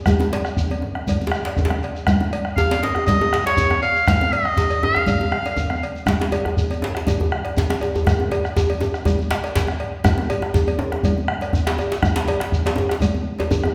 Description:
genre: west african traditional, West African drum ensemble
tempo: 120 BPM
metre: 4/4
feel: straight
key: unclear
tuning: A4 = 440 Hz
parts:
  - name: bombo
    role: percussion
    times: 0.1-13.7 s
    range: none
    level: -25 LUFS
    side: equal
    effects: none
  - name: congas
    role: percussion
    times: 0.1-13.7 s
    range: none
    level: -29 LUFS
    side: equal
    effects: none
  - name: djembe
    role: percussion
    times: 0.1-13.7 s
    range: none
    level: -30 LUFS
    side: equal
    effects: none
  - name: djembe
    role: percussion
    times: 0.1-13.7 s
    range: none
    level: -27 LUFS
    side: equal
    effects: none
  - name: shekere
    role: percussion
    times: 0.1-13.6 s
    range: none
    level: -35 LUFS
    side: equal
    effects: none
  - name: cowbell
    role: percussion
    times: 0.3-13.5 s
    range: none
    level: -34 LUFS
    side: equal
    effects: none
  - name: bright oboe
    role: melody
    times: 2.6-5.8 s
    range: Db5 to F5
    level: -22 LUFS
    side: equal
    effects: none
room: wet recital hall reverb, RT60 1.4 s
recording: heard from further back in the room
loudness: -20 LUFS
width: mono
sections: 0.0-10.1 A section; 10.1-13.7 B section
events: drum fill 8.1-10.1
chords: none

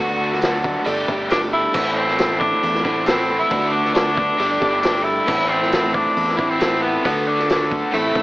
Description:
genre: folk rock and heartland rock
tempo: 136 BPM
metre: 4/4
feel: straight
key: A dorian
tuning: A4 = 440 Hz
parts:
  - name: bright tenor saxophone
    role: melody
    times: 0.0-8.2 s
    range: A3 to F#4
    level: -20 LUFS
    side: equal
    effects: digital delay
  - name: dark concert grand piano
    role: accompaniment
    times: 0.0-8.2 s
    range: C4 to E5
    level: -30 LUFS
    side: right 2 dB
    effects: none
  - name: picked swing-style acoustic guitar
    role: accompaniment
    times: 0.0-8.2 s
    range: A2 to A4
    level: -27 LUFS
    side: left 1 dB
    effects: none
  - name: bright tonewheel organ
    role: sustained chords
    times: 0.0-8.2 s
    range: A4 to E6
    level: -32 LUFS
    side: equal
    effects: none
  - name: overdriven electric guitar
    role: riff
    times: 0.0-8.2 s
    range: A2 to G4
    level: -23 LUFS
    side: equal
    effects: harmonic tremolo
  - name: fingered electric bass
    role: bass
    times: 0.0-8.2 s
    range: G1 to E2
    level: -30 LUFS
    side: equal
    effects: none
  - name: vintage drum kit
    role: drums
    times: 0.3-8.2 s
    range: crash cymbal, hi-hat, kick drum, snare drum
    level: -23 LUFS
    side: equal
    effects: none
  - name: tambourine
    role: percussion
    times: 0.4-7.6 s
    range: none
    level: -43 LUFS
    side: right 2 dB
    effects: none
room: light reverb, small room reverb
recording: AM radio sound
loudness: -16 LUFS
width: side -19 dB against mid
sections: 0.0-8.2 A section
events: none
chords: 0.0 D6; 0.9 Gsus2; 1.7 Amadd9; 3.5 D6; 4.4 Gsus2; 5.3 Amadd9; 7.0 D6

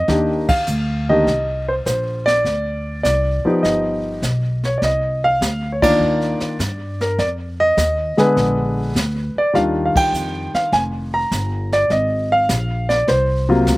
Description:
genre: jazz piano trio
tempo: 102 BPM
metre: 4/4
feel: swing 69% on 8ths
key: Eb major, C minor from 4.8 s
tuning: A4 = 440 Hz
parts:
  - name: warm concert grand piano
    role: melody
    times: 0.0-13.8 s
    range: C3 to Bb5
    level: -17 LUFS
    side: equal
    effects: none
  - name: upright bass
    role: bass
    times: 0.0-13.8 s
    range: F1 to G2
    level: -23 LUFS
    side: equal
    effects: none
  - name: jazz brush drum kit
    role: drums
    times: 0.1-13.8 s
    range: brushed snare drum, crash cymbal, hi-hat, kick drum, ride cymbal, snare drum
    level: -24 LUFS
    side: equal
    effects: none
room: little or no reverb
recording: recorded outdoors, with no room sound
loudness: -16 LUFS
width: side -20 dB against mid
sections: 0.0-4.8 A section; 4.8-13.8 B section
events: band accent 0.4, 5.7, 9.8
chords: 0.1 Ebmaj7; 2.5 Csus2; 3.6 Gaug7; 4.8 Cm11; 7.2 Fm7; 8.4 Bb7b9; 9.5 Ebmaj9; 11.9 Ab69

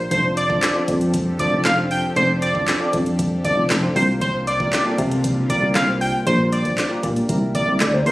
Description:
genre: dance-pop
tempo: 117 BPM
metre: 4/4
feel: straight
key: F major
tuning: A4 = 440 Hz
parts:
  - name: octave-doubled lead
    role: melody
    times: 0.1-8.1 s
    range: C5 to G5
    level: -21 LUFS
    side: equal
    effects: chorus, sidechain pumping, ping-pong delay
  - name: soft electric-piano-like synth keys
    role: accompaniment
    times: 0.1-8.1 s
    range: Bb3 to D5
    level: -26 LUFS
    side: left 1 dB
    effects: chorus, sidechain pumping
  - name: lush unison pad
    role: sustained chords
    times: 0.5-8.1 s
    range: C3 to A4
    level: -30 LUFS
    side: equal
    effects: chorus, phaser, sidechain pumping
  - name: solid FM bass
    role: bass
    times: 0.1-8.1 s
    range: F1 to C3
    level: -21 LUFS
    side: equal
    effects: sidechain pumping
  - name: smooth R&B drum kit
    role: drums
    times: 0.1-8.1 s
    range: handclaps, hi-hat, kick drum, snare drum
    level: -24 LUFS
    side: equal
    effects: none
  - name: warm velvety synth lead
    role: melody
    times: 7.8-8.1 s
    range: Bb4 to D5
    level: -21 LUFS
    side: left 1 dB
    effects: chorus
room: light reverb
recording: recorded on a phone in the room, studio reverb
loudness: -17 LUFS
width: side -18 dB against mid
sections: 0.0-8.1 A section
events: none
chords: 0.1 F6; 4.0 C7sus4; 6.3 Bb6; 7.3 C7

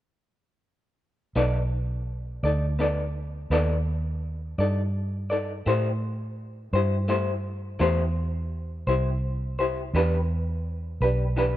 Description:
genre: blues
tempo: 56 BPM (dotted quarters)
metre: 12/8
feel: straight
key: unclear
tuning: A4 = 439 Hz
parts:
  - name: electric guitar through a small old amp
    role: accompaniment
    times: 1.4-11.6 s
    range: E3 to D5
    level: -27 LUFS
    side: left 2 dB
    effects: tremolo
  - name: vintage muted fingered electric bass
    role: bass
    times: 1.4-11.6 s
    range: B1 to A2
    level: -26 LUFS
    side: right 1 dB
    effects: none
room: light reverb, digital ambience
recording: rough home demo mix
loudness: -24 LUFS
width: side -13 dB against mid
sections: 1.4-11.6 A section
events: none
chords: 1.4 B7#9; 5.7 Am7; 9.9 Em7

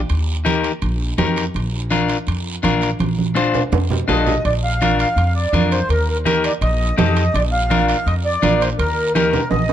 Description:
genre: latin, cumbia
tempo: 166 BPM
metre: 4/4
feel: straight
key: Bb major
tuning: A4 = 443 Hz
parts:
  - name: upright bass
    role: bass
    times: 0.0-9.7 s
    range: Bb1 to F2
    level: -20 LUFS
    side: equal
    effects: none
  - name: guiro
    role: percussion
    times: 0.1-9.7 s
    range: none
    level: -33 LUFS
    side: right 5 dB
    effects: none
  - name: timbales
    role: percussion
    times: 0.1-9.7 s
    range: none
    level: -27 LUFS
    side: right 7 dB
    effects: none
  - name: electric guitar at the edge of break-up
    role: accompaniment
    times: 0.4-9.4 s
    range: D4 to C5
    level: -22 LUFS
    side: left 5 dB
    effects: none
  - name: congas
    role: percussion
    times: 0.5-9.6 s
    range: none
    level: -23 LUFS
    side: right 3 dB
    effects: none
  - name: accordion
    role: melody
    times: 4.1-9.7 s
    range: Bb4 to F5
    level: -20 LUFS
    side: right 1 dB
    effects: light tremolo tuning
room: light reverb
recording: dark, warm production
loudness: -16 LUFS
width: side -10 dB against mid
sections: 0.0-4.5 A section; 4.5-9.7 B section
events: drum fill 3.0-4.5, 9.3-9.7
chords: 0.1 Eb; 1.6 Bb; 5.9 Eb; 7.3 Bb; 8.8 Eb

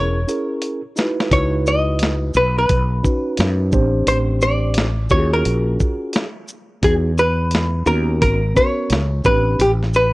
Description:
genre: hip hop, jazz-hop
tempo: 87 BPM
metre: 4/4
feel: swing 63% on 16ths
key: C# dorian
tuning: A4 = 442 Hz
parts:
  - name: archtop guitar, miked and amplified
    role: melody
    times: 0.0-10.1 s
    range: G4 to D#5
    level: -19 LUFS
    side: equal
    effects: none
  - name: mellow tine electric piano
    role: accompaniment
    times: 0.0-9.6 s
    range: B3 to C5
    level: -22 LUFS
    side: right 1 dB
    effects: slow stereo tremolo
  - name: mellow fretless electric bass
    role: bass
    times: 0.0-10.1 s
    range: E1 to F#2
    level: -19 LUFS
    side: equal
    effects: tube saturation
  - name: dusty soul sampler-style drum kit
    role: drums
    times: 0.3-10.1 s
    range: hi-hat, kick drum, shaker, snare drum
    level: -20 LUFS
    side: equal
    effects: none
room: light reverb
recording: worn, warbling old tape, cassette tape, warbly pitch drift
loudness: -15 LUFS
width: side -20 dB against mid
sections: 0.0-10.1 A section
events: drum fill 0.0-1.3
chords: 0.0 F#7; 1.3 C#m11; 2.7 B; 3.7 Am7; 5.1 D#m11; 6.8 Emaj7; 8.2 G#m11; 9.2 Am11

